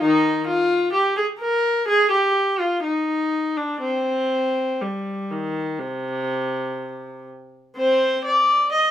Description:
classical, baroque-style suite movement for unaccompanied viola; 59-66 BPM; 4/4; rubato; C minor; A4 = 440 Hz
rich viola; solo; 0.0-8.9 s; C3 to Eb5; -19 LUFS; left 1 dB
light reverb; minimal, uncompressed stereo recording; -19 LUFS; side -11 dB against mid
0.0-7.8 A section; 7.8-8.9 B section
| 0.02 0.94 1.88 2.83 | 3.80 4.80 5.79 6.77 | 7.76 8.72

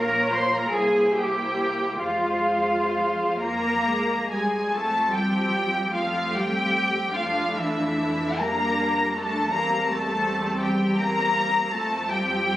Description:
classical, slow romantic movement for string orchestra; 40-55 BPM (dotted quarters); 6/8; rubato; F minor, F major from 4.7 s; A4 = 439 Hz
muted studio violin section; melody; 0.0-12.6 s; C5 to Bb5; -26 LUFS; left 2 dB
muted studio violin section; second line; 0.0-12.6 s; E4 to C6; -29 LUFS; equal
muted studio viola section; accompaniment; 0.0-12.6 s; F3 to F4; -29 LUFS; equal
muted chamber double bass section; bass; 0.0-12.6 s; Bb1 to F2; -36 LUFS; right 1 dB
muted studio cello section; bass; 0.0-12.6 s; E3 to C5; -26 LUFS; equal
moderate concert hall reverb, RT60 2.1 s; recorded on a phone in the room, studio reverb, compression; -21 LUFS; side -14 dB against mid
0.0-4.7 A section; 4.7-12.6 B section
0.0 Bbm; 0.7 C7; 2.0 Fm; 4.7 F; 7.1 Gm7/F; 9.5 C7/E; 11.7 F
0.73 | 2.00 3.42 | 4.73 5.93 | 7.14 8.39 | 9.51 10.62 | 11.73

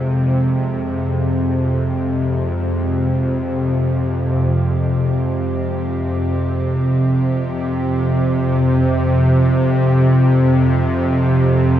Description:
dark ambient drone; free time; A4 = 439 Hz
bowed-like drone; drone; 0.0-11.8 s; F2 to C3; -15 LUFS; equal; built-in reverb
bronze singing bowl; texture; 0.0-0.5 s; Ab3 to Ab4; -36 LUFS; left 3 dB
dark studio cello section; sustained chords; 0.5-11.8 s; F3 to G4; -30 LUFS; right 1 dB; shimmer reverb
wet huge ambient reverb, RT60 7.8 s; in a vast, echoing space, cassette tape; -15 LUFS; side -11 dB against mid
0.5-11.8 A section
fade-in on cello section 0.5-11.8
0.5 F5
free time

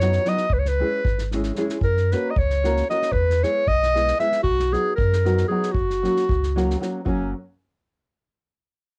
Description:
balkan folk, Balkan wedding band; 229 BPM (eighths); 5/8; straight; F# mixolydian; A4 = 441 Hz
clear clarinet; melody; 0.0-7.3 s; C#4 to E5; -24 LUFS; equal; cassette tape
nylon-string guitar; accompaniment; 0.0-7.3 s; F#3 to A#4; -28 LUFS; equal; cassette tape
pure sine sub bass; bass; 0.0-7.3 s; F#1 to F#2; -26 LUFS; equal
unplugged drum kit; percussion; 0.0-7.3 s; kick drum, snare drum; -30 LUFS; equal; cassette tape
light reverb; home recording on cassette; -22 LUFS; mono
0.0-7.1 A section; 7.1-8.4 B section
0.5 C#m; 1.8 F#; 3.1 E; 4.4 B; 5.7 F#
0.23 | 0.49 0.76 1.02 1.29 1.55 | 1.81 2.08 2.34 2.60 2.86 | 3.13 3.39 3.65 3.91 4.17 | 4.44 4.70 4.96 5.22 5.49 | 5.75 6.01 6.27 6.53 6.79 | 7.06 7.32

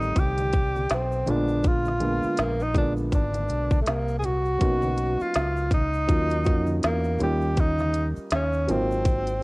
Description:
hip hop, jazz-hop; 81 BPM; 4/4; swing 60% on 16ths; Eb minor; A4 = 440 Hz
breathy tenor saxophone; melody; 0.0-9.4 s; A3 to Ab4; -26 LUFS; equal; cassette tape
dark baby grand piano; accompaniment; 0.0-9.4 s; D3 to D5; -29 LUFS; right 1 dB; cassette tape
deep dub fingered electric bass; bass; 0.0-9.4 s; Ab1 to F2; -27 LUFS; equal
tube shaker and congas; percussion; 0.0-9.4 s; -40 LUFS; left 1 dB
organic electronic drum kit; drums; 0.2-9.4 s; hi-hat, kick drum, snare drum; -25 LUFS; equal; cassette tape
light reverb, small room ambience; home recording on cassette; -22 LUFS; side -25 dB against mid
0.0-4.6 A section; 4.6-9.4 B section
0.0 F9 (rootless); 1.3 Bb7b9; 4.6 Bmaj7; 6.1 Ebm9; 7.2 Eb7; 8.7 Ab13
0.16 0.90 | 1.64 2.38 3.12 3.87 | 4.61 5.35 6.09 6.83 | 7.57 8.31 9.05

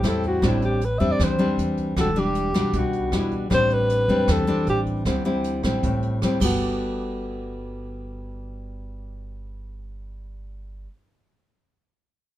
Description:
bossa nova; 155 BPM; 4/4; straight; G major; A4 = 440 Hz
mellow alto saxophone; melody; 0.0-4.8 s; E4 to E5; -24 LUFS; left 1 dB
nylon-string guitar; accompaniment; 0.0-10.9 s; A2 to A4; -24 LUFS; left 1 dB
upright bass; bass; 0.0-10.9 s; E1 to E2; -28 LUFS; right 1 dB
jazz brush drum kit; drums; 0.0-6.5 s; crash cymbal, hi-hat, kick drum, rim click; -31 LUFS; right 1 dB
light reverb; minimal, uncompressed stereo recording; -20 LUFS; side -13 dB against mid
0.0-6.6 A section; 6.6-9.7 B section
alto saxophone solo 0.0-6.6
0.0 Am7; 2.0 Em9; 3.5 Am11; 6.4 Gmaj9
0.03 | 0.42 0.81 1.19 1.58 | 1.97 2.35 2.74 3.13 | 3.51 3.90 4.29 4.67 | 5.06 5.45 5.83 6.22 | 6.61 6.99 7.38 7.77 | 8.16 8.54 8.93 9.32

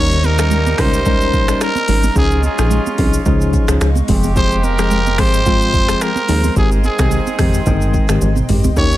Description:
afrobeats; 109 BPM; 4/4; swing 55% on 16ths; Ab major; A4 = 441 Hz
growling trumpet; melody; 0.0-9.0 s; Ab4 to Db5; -19 LUFS; right 1 dB; tape echo
clear horn section; second line; 0.0-9.0 s; G3 to Ab4; -26 LUFS; right 3 dB
bell-like tine electric piano; accompaniment; 0.0-9.0 s; Eb3 to G5; -20 LUFS; left 4 dB; fast stereo tremolo
granular cloud pad; sustained chords; 0.2-9.0 s; Ab3 to Db6; -29 LUFS; equal; built-in reverb, sidechain pumping
plucky analog bass; bass; 0.0-9.0 s; F1 to Eb2; -16 LUFS; equal
afro-pop drum kit; drums; 0.1-9.0 s; finger snaps, hi-hat, kick drum, rim click, shaker, toms; -18 LUFS; equal
congas; percussion; 0.2-8.8 s; -24 LUFS; right 7 dB
digital ambience; echo-heavy mix; -12 LUFS; side -15 dB against mid
0.0-9.0 A section
drum fill 8.2-8.8
0.0 Eb7; 2.2 Dbadd9; 4.1 Fm; 6.6 Abmaj7
0.51 1.06 1.61 | 2.16 2.71 3.26 3.81 | 4.36 4.91 5.46 6.01 | 6.56 7.12 7.67 8.22 | 8.77

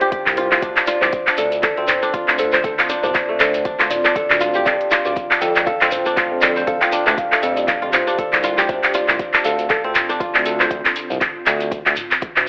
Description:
afro house; 119 BPM; 4/4; swing 56% on 16ths; D minor pentatonic; A4 = 440 Hz
kalimba; melody; 0.0-10.4 s; C5 to G5; -22 LUFS; equal; dub echo
kora; arpeggios; 0.0-11.8 s; A3 to D5; -21 LUFS; equal; sidechain pumping, dub echo
afro-pop drum kit; drums; 0.0-12.5 s; handclaps, hi-hat, toms; -17 LUFS; equal; studio reverb
electronic kick drum; drums; 0.1-12.3 s; -28 LUFS; equal; overdrive, studio reverb
smooth synth bass; bass; 0.3-12.5 s; C2 to F2; -26 LUFS; equal; sidechain pumping
ethereal airy pad; sustained chords; 1.6-12.5 s; D3 to G4; -33 LUFS; equal; ensemble chorus, built-in reverb, sidechain pumping
shekere; percussion; 0.6-12.3 s; -29 LUFS; equal
wet digital room reverb, RT60 1.0 s; telephone sound; -15 LUFS; side -39 dB against mid
0.0-12.5 A section
0.0 Dm7
0.12 | 0.62 1.13 1.63 2.14 | 2.64 3.15 3.65 4.15 | 4.66 5.16 5.67 6.17 | 6.67 7.18 7.68 8.19 | 8.69 9.20 9.70 10.20 | 10.71 11.21 11.72 12.22

